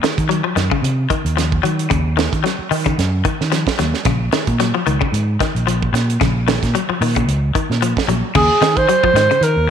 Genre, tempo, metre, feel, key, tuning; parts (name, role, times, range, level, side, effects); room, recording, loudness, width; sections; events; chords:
afrobeat; 112 BPM; 4/4; swing 56% on 16ths; Eb dorian; A4 = 444 Hz
clean electric guitar; arpeggios; 0.0-9.5 s; Db3 to Gb3; -20 LUFS; left 8 dB
fingered electric bass; bass; 0.0-9.7 s; Bb1 to Eb3; -18 LUFS; right 1 dB
tight funk drum kit; drums; 0.0-9.6 s; crash cymbal, hi-hat, kick drum, snare drum; -21 LUFS; right 4 dB
mellow alto saxophone; melody; 8.4-9.7 s; Ab4 to C5; -13 LUFS; right 2 dB
moderate echo chamber reverb, RT60 1.5 s, small room ambience; 1960s-style stereo; -14 LUFS; side -8 dB against mid
0.0-8.4 A section; 8.4-9.7 B section
0.0 Ebm9; 4.1 Bbm; 8.4 Eb7sus4